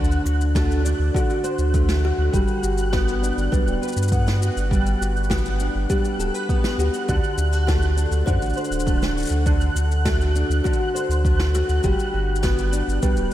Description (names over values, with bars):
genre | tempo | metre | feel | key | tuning
folktronica | 101 BPM | 4/4 | straight | G major | A4 = 440 Hz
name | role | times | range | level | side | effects
nylon-string guitar | arpeggios | 0.0-13.3 s | D3 to C5 | -26 LUFS | equal | ensemble chorus, low-pass filter, analog delay
warm sub bass | bass | 0.0-13.3 s | D1 to G2 | -21 LUFS | equal | none
shaker and snare drum | drums | 0.0-13.3 s | none | -32 LUFS | equal | none
flickering grainy texture | texture | 0.0-13.3 s | F#6 | -32 LUFS | right 2 dB | built-in reverb, analog chorus
kalimba | second line | 0.6-13.3 s | F#4 to C5 | -28 LUFS | left 2 dB | analog delay
electronic kick drum | drums | 0.6-13.1 s | none | -23 LUFS | equal | none
room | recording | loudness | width
light reverb, studio ambience | none | -19 LUFS | side -13 dB against mid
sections
0.0-13.3 A section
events
none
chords
0.0 D7; 2.3 Gmaj7; 7.1 D7; 11.8 Gmaj7